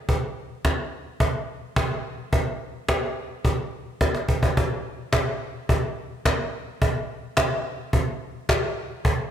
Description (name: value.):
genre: indie pop.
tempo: 107 BPM.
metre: 4/4.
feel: straight.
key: none.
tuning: none.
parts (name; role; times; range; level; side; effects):
cajon; drums; 0.1-9.2 s; none; -23 LUFS; equal; none.
group handclap; percussion; 5.1-8.6 s; none; -35 LUFS; left 4 dB; none.
room: moderate echo chamber reverb, RT60 2.0 s.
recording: none.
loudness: -23 LUFS.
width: side -9 dB against mid.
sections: 0.0-4.6 A section; 4.6-9.3 B section.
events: drum fill 4.0-4.6.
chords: none.